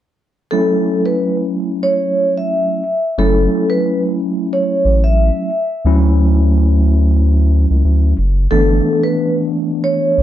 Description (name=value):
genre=hip hop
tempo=90 BPM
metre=4/4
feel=swing 57% on 16ths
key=F# minor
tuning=A4 = 438 Hz
part: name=vibraphone with medium mallets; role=melody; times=0.5-10.2 s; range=A4 to E5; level=-16 LUFS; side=equal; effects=high-pass filter, low-pass filter, slapback echo
part: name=mellow tine electric piano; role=accompaniment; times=0.5-10.2 s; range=E3 to E4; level=-17 LUFS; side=right 1 dB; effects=medium stereo tremolo, high-pass filter, low-pass filter
part: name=round analog bass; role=bass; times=3.2-10.2 s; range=F#1 to D2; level=-12 LUFS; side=equal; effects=none
room=light reverb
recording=dark, warm production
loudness=-12 LUFS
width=side -12 dB against mid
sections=0.5-3.2 A section; 3.2-10.2 B section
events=none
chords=0.5 F#m7; 5.8 Dmaj7; 8.5 G6